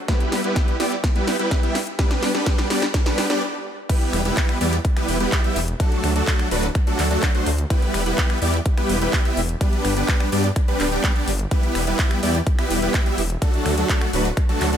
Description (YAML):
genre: EDM, festival progressive house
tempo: 126 BPM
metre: 4/4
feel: straight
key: E minor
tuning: A4 = 440 Hz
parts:
  - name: supersaw chords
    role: riff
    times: 0.1-14.8 s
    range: F#3 to E5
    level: -22 LUFS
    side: equal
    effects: analog chorus, sidechain pumping, low-pass filter, tape echo
  - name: big-room dance drum kit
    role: drums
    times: 0.1-14.8 s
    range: crash cymbal, finger snaps, handclaps, hi-hat, snare drum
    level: -28 LUFS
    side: equal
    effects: none
  - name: electronic kick drum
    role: drums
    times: 0.1-14.5 s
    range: none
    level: -20 LUFS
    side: equal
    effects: none
  - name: detuned saw bass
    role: bass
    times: 4.1-14.8 s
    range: D1 to G2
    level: -23 LUFS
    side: equal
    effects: sidechain pumping
room: light reverb, digital ambience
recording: none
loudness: -18 LUFS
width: side -9 dB against mid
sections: 0.0-3.9 A section; 3.9-14.8 B section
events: build-up 0.0-3.9; drum fill 0.0-3.4; stop 3.4-3.9; drop 3.9-14.8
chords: 0.1 Em; 2.0 G; 3.9 Em; 5.8 D; 7.7 Em; 9.6 G; 11.5 Em; 13.4 D